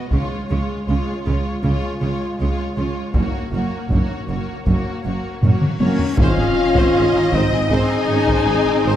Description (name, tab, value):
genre	cinematic, epic orchestral film score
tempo	79 BPM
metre	4/4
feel	straight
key	unclear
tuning	A4 = 440 Hz
part	warm symphonic violin section	melody	0.0-9.0 s	Db5 to Ab5	-31 LUFS	left 2 dB	none
part	warm symphonic violin section	second line	0.0-9.0 s	Eb4 to Eb5	-28 LUFS	left 1 dB	none
part	rich symphonic viola section	accompaniment	0.0-9.0 s	Ab3 to Eb4	-26 LUFS	equal	none
part	mellow French horn section	sustained chords	0.1-9.0 s	Ab3 to Ab4	-23 LUFS	left 3 dB	none
part	clear symphonic double bass section	bass	0.1-8.9 s	Gb1 to Db2	-23 LUFS	right 2 dB	none
part	rich symphonic cello section	bass	0.1-9.0 s	Gb2 to Db4	-25 LUFS	right 2 dB	none
part	taiko ensemble	drums	0.1-9.0 s	none	-20 LUFS	equal	none
part	reverse cymbal and impact	sound effects	5.8-9.0 s	none	-30 LUFS	equal	none
part	flute section	second line	5.8-9.0 s	Db5 to Ab5	-28 LUFS	left 2 dB	none
part	mellow tuba	bass	6.2-8.9 s	Ab1	-26 LUFS	right 2 dB	none
room	moderate scoring stage reverb, RT60 1.8 s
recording	none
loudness	-16 LUFS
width	side -11 dB against mid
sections	0.0-6.2 A section; 6.2-9.0 B section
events	drum fill 5.4-6.2; reverse cymbal 5.8-6.2; impact 6.2-9.0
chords	0.1 Db; 3.1 Gb; 6.2 Ab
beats	| 0.11 0.87 1.63 2.39 | 3.15 3.91 4.67 5.43 | 6.18 6.95 7.70 8.46